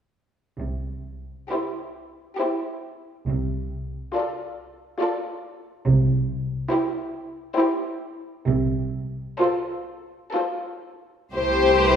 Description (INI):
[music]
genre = classical, slow romantic movement for string orchestra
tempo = 56-72 BPM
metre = 3/4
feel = rubato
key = C major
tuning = A4 = 440 Hz
[part]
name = dark studio double bass section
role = bass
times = 0.6-12.0 s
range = C2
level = -27 LUFS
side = right 2 dB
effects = none
[part]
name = rich studio cello section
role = bass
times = 0.6-12.0 s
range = C2 to C3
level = -26 LUFS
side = right 2 dB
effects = none
[part]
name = rich studio violin section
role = melody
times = 1.5-12.0 s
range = C5 to D5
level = -26 LUFS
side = left 5 dB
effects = none
[part]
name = rich studio violin section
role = second line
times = 1.5-12.0 s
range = G4 to C5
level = -27 LUFS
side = equal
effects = none
[part]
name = warm studio viola section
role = accompaniment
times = 1.5-12.0 s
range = A3 to F4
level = -26 LUFS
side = right 1 dB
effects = none
[sound]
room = wet recital hall reverb, RT60 1.7 s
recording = heard from further back in the room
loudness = -23 LUFS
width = side -8 dB against mid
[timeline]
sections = 0.6-11.4 A section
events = none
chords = 0.6 C; 3.3 Dm7/C; 5.9 C; 8.5 F/C; 11.4 C